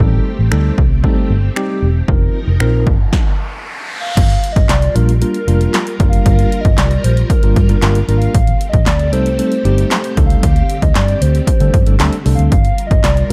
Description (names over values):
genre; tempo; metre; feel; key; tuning
dance-pop; 115 BPM; 4/4; straight; G minor; A4 = 440 Hz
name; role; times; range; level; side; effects
tine electric piano; accompaniment; 0.0-13.3 s; F3 to Bb4; -22 LUFS; equal; sidechain pumping
string machine, full ensemble; sustained chords; 0.0-13.3 s; D3 to Bb4; -27 LUFS; equal; ensemble chorus, sidechain pumping
vintage muted fingered electric bass; bass; 0.0-13.3 s; E1 to D3; -16 LUFS; equal; sidechain pumping
punchy analog drum machine; drums; 0.0-13.3 s; crash cymbal, finger snaps, handclaps, hi-hat, kick drum, snare drum; -16 LUFS; equal; none
riser; sound effects; 2.8-4.2 s; none; -30 LUFS; equal; none
hollow clarinet-like synth lead; melody; 4.0-13.3 s; Bb4 to F5; -24 LUFS; equal; chorus
room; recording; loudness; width
digital ambience; dark, warm production; -13 LUFS; mono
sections
0.0-4.2 A section; 4.2-13.3 B section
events
riser 2.8-4.2; stop 3.1-4.2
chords
0.0 Am7b5; 2.1 F7sus4; 4.2 Gm7; 8.3 Am7b5; 10.4 D7sus4; 12.5 Gm7